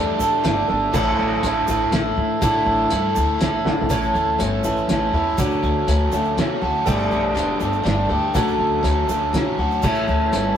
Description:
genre	folk rock and heartland rock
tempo	121 BPM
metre	3/4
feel	straight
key	A mixolydian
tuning	A4 = 441 Hz
part	bright baby grand piano	accompaniment	0.0-10.6 s	D4 to A5	-33 LUFS	right 5 dB	none
part	picked acoustic archtop guitar	accompaniment	0.0-10.6 s	A2 to A4	-21 LUFS	right 1 dB	none
part	tonewheel organ	sustained chords	0.0-10.6 s	C#4 to C#5	-38 LUFS	right 1 dB	none
part	overdriven electric guitar	riff	0.0-10.6 s	A2 to A4	-25 LUFS	left 1 dB	none
part	upright bass	bass	0.0-10.5 s	E1 to B2	-25 LUFS	equal	none
part	egg shaker	percussion	0.2-10.4 s	none	-40 LUFS	right 6 dB	none
part	cloth-damped thuddy drum kit	drums	0.4-10.4 s	crash cymbal, hi-hat, kick drum, snare drum, toms	-24 LUFS	equal	none
room	wet small room ambience, RT60 0.5 s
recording	rough rehearsal-room recording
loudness	-17 LUFS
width	side -9 dB against mid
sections	0.0-3.9 A section; 3.9-10.6 B section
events	drum fill 3.7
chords	0.0 Gsus2; 0.9 Asus4; 3.9 A; 5.4 Dmaj7; 6.9 Gsus2; 8.4 Dmaj7; 9.8 A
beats	0.45 | 0.94 1.43 1.93 | 2.42 2.91 3.41 | 3.90 4.40 4.89 | 5.39 5.88 6.38 | 6.87 7.37 7.86 | 8.35 8.85 9.34 | 9.84 10.33

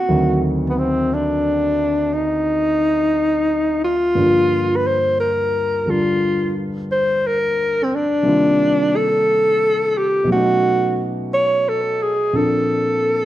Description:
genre	jazz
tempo	59 BPM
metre	4/4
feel	swing 66% on 8ths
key	unclear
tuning	A4 = 439 Hz
part	breathy alto saxophone	melody	0.0-13.2 s	Cb4 to C#5	-17 LUFS	equal	slapback echo
part	warm concert grand piano	accompaniment	0.0-13.2 s	D2 to F4	-22 LUFS	equal	none
room	studio reverb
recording	dry, close 1970s-style studio recording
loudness	-16 LUFS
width	side -13 dB against mid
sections	0.0-13.2 A section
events	none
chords	0.1 D7b9; 4.2 Gm7; 8.2 Cm11; 10.3 B9; 12.3 Bbmaj9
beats	| 0.07 1.09 2.12 3.14 | 4.16 5.18 6.20 7.22 | 8.24 9.26 10.29 11.31 | 12.33

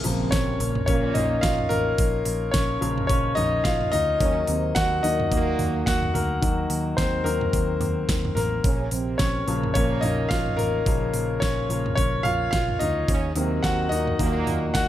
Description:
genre	piano-driven pop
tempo	108 BPM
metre	4/4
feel	swing 56% on 16ths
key	Bb minor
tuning	A4 = 440 Hz
part	clear concert grand piano	accompaniment	0.0-14.9 s	Db3 to Gb5	-24 LUFS	left 2 dB	none
part	vintage muted picked electric bass	bass	0.0-14.9 s	A1 to Eb2	-28 LUFS	equal	none
part	pop drum kit	drums	0.0-14.9 s	hi-hat, kick drum, snare drum, toms	-26 LUFS	right 1 dB	none
part	impact	sound effects	0.0-2.0 s	none	-38 LUFS	right 2 dB	none
part	mellow French horn section	second line	0.1-14.9 s	Bb2 to Db4	-30 LUFS	right 5 dB	none
room	light reverb, digital ambience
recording	none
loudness	-21 LUFS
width	side -12 dB against mid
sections	0.0-14.9 A section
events	impact 0.0-2.0; grand piano solo 0.0-14.9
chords	0.0 Bbm; 4.2 Ebm; 8.6 Bbm; 13.1 Ebm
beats	0.32 0.88 1.43 | 1.99 2.54 3.10 3.65 | 4.21 4.76 5.32 5.87 | 6.42 6.98 7.53 8.09 | 8.64 9.20 9.75 10.31 | 10.86 11.42 11.97 12.53 | 13.09 13.64 14.20 14.75

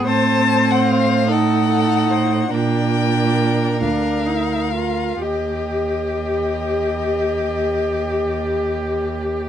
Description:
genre	classical, slow romantic movement for string quartet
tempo	38-50 BPM (dotted quarters)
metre	12/8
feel	rubato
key	Eb major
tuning	A4 = 444 Hz
part	clear violin	second line	0.0-9.5 s	G4 to C5	-26 LUFS	left 3 dB	none
part	clear viola	accompaniment	0.0-9.5 s	C4 to G4	-21 LUFS	right 1 dB	none
part	rich cello	bass	0.0-9.5 s	D2 to Bb2	-21 LUFS	right 5 dB	none
part	rich violin	melody	0.1-9.5 s	Eb5 to A5	-23 LUFS	left 8 dB	none
room	light reverb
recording	dark, warm production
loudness	-16 LUFS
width	side -10 dB against mid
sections	0.0-9.5 A section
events	none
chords	0.1 Adim7; 2.5 Bb; 5.2 Eb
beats	| 0.06 1.29 2.52 3.81 | 5.23 6.77 8.29

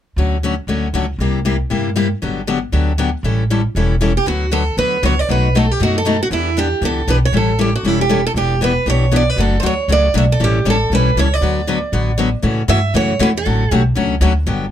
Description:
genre	acoustic string swing (jazz manouche)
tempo	235 BPM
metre	4/4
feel	swing 56% on 8ths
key	D major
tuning	A4 = 443 Hz
part	picked steel-string acoustic guitar	accompaniment	0.2-14.7 s	B2 to B4	-18 LUFS	left 4 dB	none
part	upright bass	bass	0.2-14.7 s	E1 to A2	-17 LUFS	equal	none
part	picked steel-string acoustic guitar	melody	4.2-13.8 s	E4 to E5	-18 LUFS	right 4 dB	none
room	light reverb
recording	close, detailed microphones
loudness	-14 LUFS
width	side -10 dB against mid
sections	0.2-4.3 A section; 4.3-12.4 B section; 12.4-14.7 C section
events	none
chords	0.2 Dmaj7; 1.2 C7; 2.2 Gmaj7; 3.2 A7; 4.3 D6; 5.3 B7; 6.3 Em7; 7.3 A7; 8.4 Em7; 9.4 Dmaj7/F#; 10.4 A7; 11.4 D6; 12.4 A6; 13.5 Dmaj7/A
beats	| 0.18 0.43 0.69 0.94 | 1.20 1.46 1.71 1.97 | 2.22 2.48 2.73 2.99 | 3.25 3.50 3.76 4.01 | 4.27 4.52 4.78 5.04 | 5.29 5.55 5.80 6.06 | 6.31 6.57 6.82 7.08 | 7.33 7.59 7.84 8.10 | 8.36 8.61 8.87 9.12 | 9.38 9.63 9.88 10.14 | 10.39 10.65 10.90 11.16 | 11.41 11.67 11.92 12.18 | 12.43 12.69 12.94 13.20 | 13.45 13.71 13.96 14.21 | 14.47

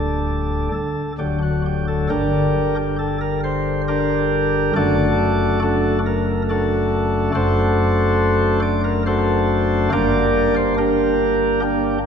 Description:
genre	classical, chorale-style piece for pipe organ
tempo	70 BPM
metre	3/4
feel	rubato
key	G minor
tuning	A4 = 440 Hz
part	chamber organ, sparkling flutes	solo	0.0-12.1 s	D1 to D5	-16 LUFS	equal	none
room	wet church reverb, RT60 3.1 s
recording	minimal, uncompressed stereo recording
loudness	-16 LUFS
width	side -7 dB against mid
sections	0.0-2.1 A section; 2.1-12.1 A section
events	none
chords	0.0 Dsus4; 1.2 D; 2.1 Gm; 4.8 D/F#; 9.9 Gm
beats	0.26 1.19 | 2.11 3.00 3.88 | 4.76 5.62 6.48 | 7.34 8.20 9.06 | 9.92 10.77 11.62

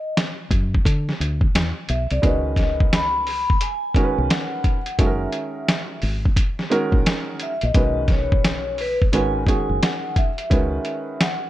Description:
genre	hip hop, jazz-hop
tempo	87 BPM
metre	4/4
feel	swing 64% on 16ths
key	unclear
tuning	A4 = 441 Hz
part	vibraphone with soft mallets	melody	0.0-11.5 s	B4 to B5	-26 LUFS	left 1 dB	slapback echo
part	lo-fi sampler-style drum kit	drums	0.2-11.4 s	hi-hat, kick drum, snare drum	-20 LUFS	equal	vintage 12-bit sampler grit
part	fingered electric bass	bass	0.5-10.8 s	F#1 to D3	-24 LUFS	equal	none
part	warm grand piano	accompaniment	2.2-11.5 s	D#3 to B4	-25 LUFS	right 3 dB	none
room	little or no reverb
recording	none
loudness	-18 LUFS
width	side -14 dB against mid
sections	0.0-11.5 A section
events	none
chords	0.0 N.C.; 0.9 Dsus2; 2.2 C#sus2; 5.0 F#7; 7.8 B69; 9.1 G#m7; 10.5 C#m9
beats	0.17 0.85 1.54 | 2.23 2.92 3.61 4.30 | 4.99 5.68 6.37 7.06 | 7.75 8.44 9.13 9.82 | 10.51 11.20

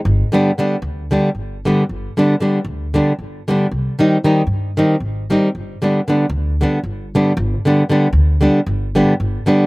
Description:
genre	balkan folk, Balkan wedding band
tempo	230 BPM (eighths)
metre	7/8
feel	straight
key	unclear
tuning	A4 = 440 Hz
part	upright bass	bass	0.1-9.4 s	G1 to G2	-19 LUFS	equal	none
part	flamenco guitar	accompaniment	0.3-9.6 s	D3 to Eb4	-15 LUFS	equal	none
room	little or no reverb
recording	recorded outdoors, with no room sound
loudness	-14 LUFS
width	side -23 dB against mid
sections	0.0-7.4 A section; 7.4-9.7 A section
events	none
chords	0.1 G; 3.7 Cm; 5.6 G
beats	| 0.06 0.33 0.59 0.85 1.11 1.37 1.64 | 1.90 2.16 2.42 2.68 2.94 3.21 3.47 | 3.73 3.99 4.25 4.51 4.78 5.04 5.30 | 5.56 5.82 6.08 6.34 6.60 6.86 7.12 | 7.38 7.64 7.91 8.16 8.43 8.69 8.95 | 9.21 9.47

